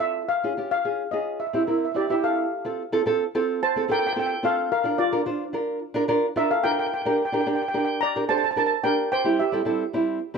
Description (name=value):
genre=calypso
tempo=109 BPM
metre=4/4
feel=straight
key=F major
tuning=A4 = 440 Hz
part: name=steel pan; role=melody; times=0.0-10.4 s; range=F4 to Bb5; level=-24 LUFS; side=equal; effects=none
part: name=nylon-string guitar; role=accompaniment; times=0.0-10.4 s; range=G3 to C5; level=-25 LUFS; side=right 2 dB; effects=none
room=little or no reverb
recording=close, detailed microphones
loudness=-22 LUFS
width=side -5 dB against mid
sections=0.0-2.5 A section; 2.5-10.4 B section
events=none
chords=0.3 Db; 1.4 C7; 2.5 F; 4.7 Bb; 6.9 Gm; 9.1 C/G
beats=| 0.30 0.85 1.41 1.96 | 2.51 3.06 3.61 4.16 | 4.71 5.26 5.81 6.36 | 6.91 7.46 8.01 8.56 | 9.11 9.66 10.21